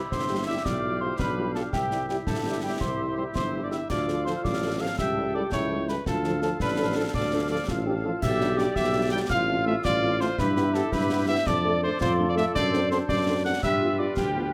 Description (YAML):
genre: military-style march for wind band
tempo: 111 BPM (dotted quarters)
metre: 6/8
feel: straight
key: unclear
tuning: A4 = 440 Hz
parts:
  - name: clear woodwind section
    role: second line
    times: 0.0-14.5 s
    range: F4 to G5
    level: -38 LUFS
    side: equal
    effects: none
  - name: mellow hollow piccolo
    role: second line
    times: 0.0-14.5 s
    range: G5 to G6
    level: -35 LUFS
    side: equal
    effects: none
  - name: warm tuba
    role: bass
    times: 0.0-14.5 s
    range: G1 to G2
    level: -32 LUFS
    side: equal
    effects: none
  - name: warm cornet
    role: melody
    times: 0.1-14.5 s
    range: G4 to G5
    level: -33 LUFS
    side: equal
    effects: none
  - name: clear euphonium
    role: second line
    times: 0.1-14.4 s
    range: D4 to G4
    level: -34 LUFS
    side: equal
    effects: none
  - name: concert snare drum, concert bass drum and clash cymbals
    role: drums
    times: 0.1-14.3 s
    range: none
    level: -35 LUFS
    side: equal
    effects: none
  - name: mellow French horn section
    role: accompaniment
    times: 0.3-14.4 s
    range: F3 to A4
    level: -35 LUFS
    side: equal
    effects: none
room: moderate large studio reverb, RT60 1.1 s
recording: none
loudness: -26 LUFS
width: mono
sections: 0.0-14.5 A section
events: none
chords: 0.0 C; 0.7 G7/B; 1.7 C; 3.9 Dm; 5.0 A7/C#; 6.1 Dm; 8.2 G/B; 9.3 F/A; 10.4 Em/G; 11.5 Dm/F; 12.5 D7/F#; 13.6 G7